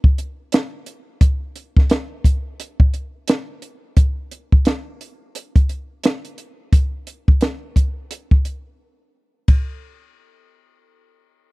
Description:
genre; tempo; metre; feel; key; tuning
hip hop; 87 BPM; 4/4; swing 61% on 16ths; none; none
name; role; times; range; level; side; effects
compact cocktail drum kit; drums; 0.0-9.7 s; hi-hat, kick drum, ride cymbal, snare drum; -14 LUFS; equal; none
room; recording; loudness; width
little or no reverb; dry, close 1970s-style studio recording; -17 LUFS; side -24 dB against mid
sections
0.0-9.5 A section; 9.5-11.5 B section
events
break 8.8-9.5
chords
none

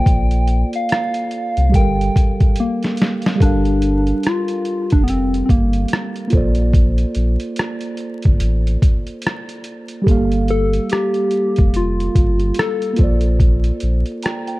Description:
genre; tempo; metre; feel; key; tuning
lo-fi hip hop; 72 BPM; 4/4; swing 58% on 16ths; G minor; A4 = 440 Hz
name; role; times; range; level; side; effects
soft struck synth lead; melody; 0.0-13.2 s; Bb3 to G5; -20 LUFS; left 1 dB; chorus
muted felt-like synth keys; accompaniment; 0.0-14.6 s; G3 to Bb5; -23 LUFS; right 2 dB; chorus, cassette tape
warm sub bass; bass; 0.1-14.0 s; F1 to C2; -18 LUFS; equal; none
boom bap sampler-style drum kit; drums; 0.1-14.6 s; hi-hat, kick drum, rim click, snare drum; -16 LUFS; equal; vintage 12-bit sampler grit
room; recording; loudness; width
digital ambience; dark, warm production, vinyl crackle; -15 LUFS; side -19 dB against mid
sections
0.0-3.4 A section; 3.4-14.6 B section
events
drum fill 2.6-3.4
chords
0.0 Bbmaj9; 1.7 Gm9; 6.3 Bbmaj9; 10.1 Gm9; 13.0 Bbmaj9

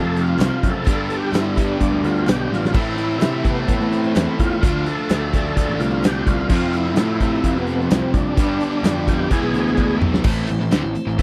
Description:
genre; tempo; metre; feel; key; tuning
classic rock; 128 BPM; 4/4; straight; A minor; A4 = 440 Hz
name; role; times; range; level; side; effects
overdriven tonewheel organ; melody; 0.0-10.0 s; B3 to A4; -27 LUFS; equal; slow rotary speaker, chorus vibrato
picked twelve-string acoustic guitar; accompaniment; 0.0-10.3 s; E2 to G#4; -36 LUFS; equal; none
tonewheel organ; sustained chords; 0.0-11.2 s; E3 to D5; -35 LUFS; equal; none
cranked stack guitar; riff; 0.0-11.2 s; E2 to G#4; -30 LUFS; equal; overdrive
distorted electric guitar; riff; 0.0-11.2 s; E2 to D4; -30 LUFS; equal; overdrive
overdriven electric guitar; riff; 0.0-11.2 s; E2 to D4; -30 LUFS; equal; none
fuzz picked electric bass; bass; 0.0-11.2 s; A1 to C3; -26 LUFS; equal; overdrive
big rock drum kit; drums; 0.2-11.2 s; crash cymbal, hi-hat, kick drum, snare drum, tambourine, toms; -22 LUFS; equal; none
group handclap; percussion; 0.4-10.8 s; none; barely audible; none; none
room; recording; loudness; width
small room ambience; dry, close 1970s-style studio recording; -19 LUFS; mono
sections
0.0-10.3 A section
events
drum fill 2.5, 9.8-10.3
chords
0.0 F; 0.9 G; 2.8 Am; 4.6 Dm; 6.5 F; 8.4 G; 9.3 E; 10.3 Am

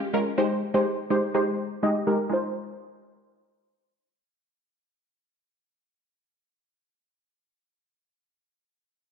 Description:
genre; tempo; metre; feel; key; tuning
pop; 124 BPM; 4/4; straight; F minor; A4 = 441 Hz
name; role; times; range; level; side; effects
wide unison pluck; accompaniment; 0.0-7.0 s; Ab3 to Eb5; -23 LUFS; equal; low-pass filter
room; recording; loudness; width
moderate echo chamber reverb, RT60 1.6 s, digital ambience; 1960s-style stereo; -23 LUFS; side -6 dB against mid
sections
0.0-2.3 A section; 2.3-6.2 B section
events
filter sweep on synth pluck 0.0-2.3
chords
0.4 Abmaj7; 2.3 Fm7

